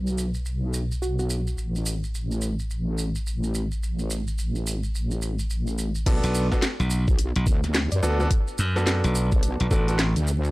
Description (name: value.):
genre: glitch hop.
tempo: 107 BPM.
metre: 4/4.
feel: swing 62% on 16ths.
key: B minor.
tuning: A4 = 440 Hz.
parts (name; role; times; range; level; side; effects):
wobble bass; bass; 0.0-10.5 s; A1 to F#2; -25 LUFS; equal; chorus, tube saturation.
maracas; percussion; 0.1-10.5 s; none; -36 LUFS; right 3 dB; none.
woody wave-folded pluck; melody; 1.0-1.3, 7.9-10.5 s; F#4 to D5; -35 LUFS; right 1 dB; chorus, tape echo.
clear baby grand piano; stabs; 6.1-9.9 s; B3 to A4; -29 LUFS; right 1 dB; sidechain pumping, tape echo.
drum and bass drum kit; drums; 6.1-10.2 s; crash cymbal, hi-hat, snare drum; -27 LUFS; equal; none.
electronic kick drum; drums; 6.1-9.8 s; none; -22 LUFS; equal; none.
glassy slap bass; bass; 6.2-10.1 s; A1 to F#2; -22 LUFS; equal; tube saturation.
room: digital ambience.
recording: dry, gritty hardware recording, transformer saturation.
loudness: -22 LUFS.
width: side -20 dB against mid.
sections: 0.0-6.1 A section; 6.1-10.5 B section.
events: drop 6.1-10.5.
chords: 0.0 N.C.; 6.1 Bm7.